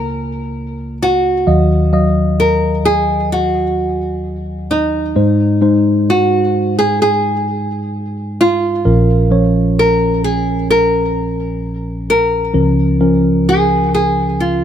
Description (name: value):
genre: pop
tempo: 65 BPM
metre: 4/4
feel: straight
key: Db major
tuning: A4 = 436 Hz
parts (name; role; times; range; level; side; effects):
- nylon-string guitar; melody; 0.0-14.6 s; Eb4 to Bb4; -16 LUFS; equal; none
- tine electric piano; accompaniment; 0.0-14.6 s; Bb1 to F5; -15 LUFS; equal; phaser
room: light reverb, small room ambience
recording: none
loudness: -12 LUFS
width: side -9 dB against mid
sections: 0.0-14.6 A section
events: none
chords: 0.0 Db6; 1.5 Ebmadd9; 5.2 Ab; 8.8 Bbm; 12.5 Db6